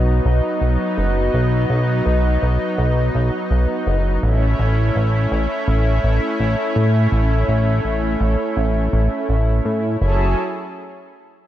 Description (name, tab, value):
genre	synthwave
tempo	83 BPM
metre	4/4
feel	straight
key	unclear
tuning	A4 = 440 Hz
part	lush unison pad	sustained chords	0.0-10.4 s	F#3 to A4	-21 LUFS	equal	chorus
part	chorused synth bass	bass	0.0-10.4 s	F#1 to A2	-17 LUFS	equal	none
room	light reverb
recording	none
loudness	-16 LUFS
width	side -12 dB against mid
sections	0.0-10.0 A section; 10.0-11.5 B section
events	none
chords	0.0 B; 4.2 A; 10.0 F#m7